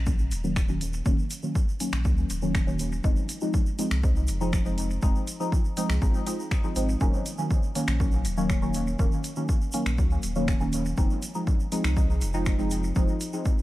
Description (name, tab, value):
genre	dub techno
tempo	121 BPM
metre	4/4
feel	straight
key	Eb dorian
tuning	A4 = 440 Hz
part	pure sine sub bass	bass	0.0-13.1 s	Eb1 to Db2	-28 LUFS	equal	sidechain pumping
part	deep mellow chord stab	stabs	0.1-13.5 s	Eb3 to Eb4	-29 LUFS	equal	chorus, phaser, sidechain pumping, dub echo
part	electronic kick drum	drums	0.1-13.6 s	none	-24 LUFS	equal	small room ambience
part	tube shaker	percussion	0.1-13.6 s	none	-41 LUFS	right 2 dB	none
part	deep house drum kit	drums	0.3-13.3 s	finger snaps, hi-hat	-36 LUFS	left 1 dB	small room ambience, dub echo
room	digital ambience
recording	vinyl crackle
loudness	-23 LUFS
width	side -16 dB against mid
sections	0.0-13.6 A section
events	none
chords	0.0 Ebm7; 3.0 Fm7; 7.0 Ebm7; 11.0 Fm7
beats	0.07 0.56 | 1.06 1.55 2.05 2.55 | 3.04 3.54 4.03 4.53 | 5.03 5.52 6.02 6.51 | 7.01 7.50 8.00 8.50 | 8.99 9.49 9.98 10.48 | 10.98 11.47 11.97 12.46 | 12.96 13.46